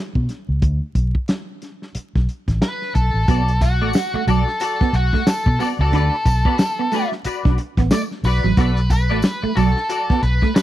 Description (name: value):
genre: funk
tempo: 91 BPM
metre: 4/4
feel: swing 60% on 16ths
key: B minor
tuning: A4 = 439 Hz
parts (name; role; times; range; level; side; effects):
- vintage muted fingered electric bass; bass; 0.2-10.4 s; A1 to B2; -18 LUFS; equal; none
- warm soul drum kit; drums; 0.2-10.6 s; hi-hat, kick drum, snare drum; -20 LUFS; equal; none
- octave-fuzz lead guitar; melody; 2.6-10.6 s; F#4 to D5; -23 LUFS; equal; distortion
- clean electric guitar; accompaniment; 3.3-10.6 s; F#4 to D5; -27 LUFS; left 6 dB; ensemble chorus
- semi-hollow electric guitar; riff; 3.3-10.5 s; F#3 to D4; -23 LUFS; right 6 dB; none
- tambourine; percussion; 3.3-10.6 s; none; -40 LUFS; left 5 dB; none
room: small room ambience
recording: dry, close 1970s-style studio recording, vinyl crackle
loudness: -16 LUFS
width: side -14 dB against mid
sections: 0.0-3.3 A section; 3.3-10.6 B section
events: none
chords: 0.0 Aadd9 (rootless); 0.6 D5; 3.3 Bm7; 5.9 D6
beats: | 0.63 1.29 1.95 2.62 | 3.28 3.94 4.61 5.27 | 5.93 6.59 7.25 7.91 | 8.58 9.24 9.90 10.56